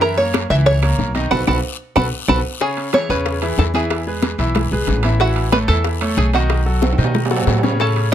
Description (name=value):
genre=latin, salsa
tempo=185 BPM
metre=4/4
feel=straight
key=unclear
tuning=A4 = 440 Hz
part: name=open-back banjo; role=melody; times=0.0-8.1 s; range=F#4 to B5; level=-20 LUFS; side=right 2 dB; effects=none
part: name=bright grand piano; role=accompaniment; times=0.0-8.1 s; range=C#3 to E5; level=-22 LUFS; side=equal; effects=none
part: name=upright bass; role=bass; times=0.0-8.1 s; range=A1 to B2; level=-19 LUFS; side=equal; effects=none
part: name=bongos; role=percussion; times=0.0-8.1 s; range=none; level=-26 LUFS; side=left 8 dB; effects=none
part: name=congas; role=percussion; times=0.0-8.1 s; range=none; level=-24 LUFS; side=equal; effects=none
part: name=guiro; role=percussion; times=0.0-8.1 s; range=none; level=-32 LUFS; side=left 8 dB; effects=none
part: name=timbales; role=percussion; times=0.2-8.1 s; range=none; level=-26 LUFS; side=right 7 dB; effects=none
part: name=claves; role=percussion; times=0.3-2.4, 8.1 s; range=none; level=-28 LUFS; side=right 6 dB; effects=none
room=little or no reverb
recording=close, detailed microphones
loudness=-15 LUFS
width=side -10 dB against mid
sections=0.0-2.6 A section; 2.6-8.1 B section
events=band accent 1.3-2.6; drum fill 2.0-2.6, 6.8-7.8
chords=0.0 F#7; 1.3 B5; 2.6 Amaj7 (rootless); 3.9 E; 5.2 A6; 6.5 B7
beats=| 0.02 0.34 0.67 0.99 | 1.31 1.64 1.96 2.28 | 2.61 2.93 3.26 3.58 | 3.90 4.23 4.55 4.88 | 5.20 5.53 5.85 6.18 | 6.50 6.83 7.15 7.48 | 7.80 8.13